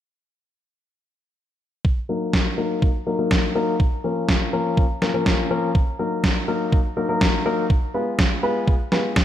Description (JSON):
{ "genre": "italo disco", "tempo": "123 BPM", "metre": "4/4", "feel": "straight", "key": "Eb minor", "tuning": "A4 = 435 Hz", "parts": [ { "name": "electronic kick drum", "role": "drums", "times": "1.8-9.2 s", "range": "none", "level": "-20 LUFS", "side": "right 1 dB", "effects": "studio reverb" }, { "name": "dark baby grand piano", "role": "stabs", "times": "2.1-9.2 s", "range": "F3 to Cb5", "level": "-22 LUFS", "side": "left 2 dB", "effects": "low-pass filter, ping-pong delay" }, { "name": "electronic snare drum", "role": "drums", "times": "2.3-9.2 s", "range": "none", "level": "-23 LUFS", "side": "equal", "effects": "studio reverb, gated reverb" } ], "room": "light reverb, studio reverb", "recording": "none", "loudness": "-19 LUFS", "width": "side -11 dB against mid", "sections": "1.8-9.2 A section", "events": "filter sweep on grand piano 1.8-9.2", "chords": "1.8 Ebm; 3.8 Bbm; 5.7 Ebm; 7.7 Fdim" }